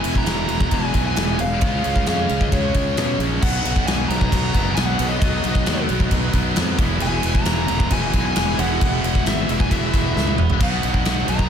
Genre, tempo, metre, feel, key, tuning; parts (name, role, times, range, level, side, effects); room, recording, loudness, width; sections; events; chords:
hard rock; 134 BPM; 4/4; straight; A4 = 440 Hz
bluesy overdriven lead guitar; melody; 0.0-11.5 s; Db5 to Bb5; -26 LUFS; left 2 dB; distortion
heavy high-gain guitar; riff; 0.0-11.5 s; E2 to Db4; -28 LUFS; left 12 dB; distortion
tight distorted guitar; riff; 0.0-11.5 s; E2 to Db4; -29 LUFS; right 12 dB; distortion
tight distorted guitar; riff; 0.0-11.5 s; Cb3 to Gb4; -28 LUFS; right 2 dB; distortion
fuzz fingered electric bass; bass; 0.0-11.5 s; E1 to Cb3; -24 LUFS; equal; overdrive
big rock drum kit; drums; 0.0-11.5 s; crash cymbal, kick drum, ride cymbal, snare drum, splash cymbal, toms; -21 LUFS; equal
light reverb, small room ambience; -17 LUFS; side -8 dB against mid
0.0-3.4 A section; 3.4-11.5 A section
drum fill 10.2-10.6
0.0 E; 1.6 Db; 3.4 Cb; 6.8 E; 10.6 Cb